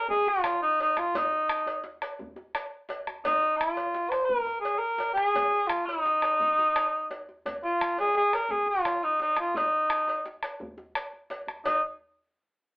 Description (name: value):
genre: west african traditional, West African drum ensemble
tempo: 114 BPM (dotted quarters)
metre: 12/8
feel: straight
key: unclear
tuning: A4 = 437 Hz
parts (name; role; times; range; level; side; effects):
- dark cor anglais; melody; 0.0-11.8 s; Eb4 to C5; -24 LUFS; equal; none
- bombo; percussion; 0.1-11.8 s; none; -34 LUFS; equal; none
- djembe; percussion; 0.1-11.8 s; none; -49 LUFS; equal; none
- cowbell; percussion; 0.5-11.8 s; none; -37 LUFS; equal; none
room: wet small room reverb, RT60 0.5 s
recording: band playing live in one room, AM radio sound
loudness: -25 LUFS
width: side -30 dB against mid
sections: 0.0-11.6 A section; 11.6-12.8 B section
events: none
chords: none